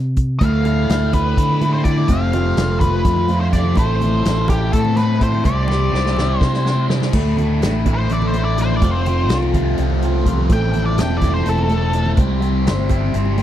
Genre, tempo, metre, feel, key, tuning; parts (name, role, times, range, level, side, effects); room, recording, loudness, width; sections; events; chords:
psychedelic rock; 250 BPM (eighths); 7/8; straight; D dorian; A4 = 441 Hz
fingered electric bass; bass; 0.0-13.4 s; E1 to D3; -18 LUFS; equal
vintage drum kit; drums; 0.2-13.4 s; crash cymbal, hi-hat, kick drum, snare drum; -19 LUFS; equal
octave-fuzz lead guitar; melody; 0.4-12.1 s; G4 to G5; -23 LUFS; left 1 dB; wah, distortion, slapback echo
biting overdriven guitar; riff; 0.4-13.4 s; D2 to C5; -20 LUFS; left 1 dB; phaser
congas; percussion; 0.4-13.4 s; -27 LUFS; right 3 dB
little or no reverb; dry, close 1970s-style studio recording; -15 LUFS; side -11 dB against mid
0.0-7.1 A section; 7.1-13.4 B section
drum fill 5.7-7.1; lead electric guitar solo 7.1-13.4
0.4 Dmadd9; 2.1 F; 3.8 Am; 5.5 Cadd9; 7.1 Dsus2; 8.8 F; 10.5 Am; 12.2 C